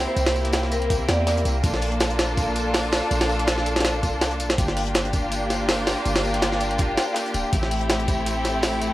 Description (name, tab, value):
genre	drum and bass, jungle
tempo	163 BPM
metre	4/4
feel	swing 54% on 16ths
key	G dorian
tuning	A4 = 441 Hz
part	rich studio string section	sustained chords	0.0-8.9 s	A3 to A4	-24 LUFS	equal	none
part	warm 808-style bass	bass	0.0-8.9 s	D1 to E2	-27 LUFS	equal	none
part	vibraphone with medium hard mallets	melody	0.1-1.4 s	Bb4 to D5	-29 LUFS	right 1 dB	dub echo
part	compact cocktail drum kit	drums	0.2-8.9 s	hi-hat, snare drum, tambourine	-34 LUFS	left 2 dB	high-pass filter on hats, high-pass filter on snare, high-pass filter on perc, high-pass filter on room
part	jungle sampler-style drum kit	drums	0.2-8.9 s	hi-hat, kick drum, snare drum	-24 LUFS	equal	none
room	moderate lush hall reverb, RT60 1.9 s, small room ambience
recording	dry, gritty hardware recording, vinyl crackle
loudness	-20 LUFS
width	side -16 dB against mid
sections	0.0-4.6 A section; 4.6-8.9 A section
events	drop 0.0-4.6, 4.6-8.9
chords	0.0 C7; 1.6 Bbmaj7; 4.6 Gm7; 7.5 Am7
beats	| 0.17 0.53 0.90 1.27 | 1.64 2.01 2.37 2.74 | 3.11 3.48 3.85 4.21 | 4.58 4.95 5.32 5.69 | 6.05 6.42 6.79 7.16 | 7.53 7.89 8.26 8.63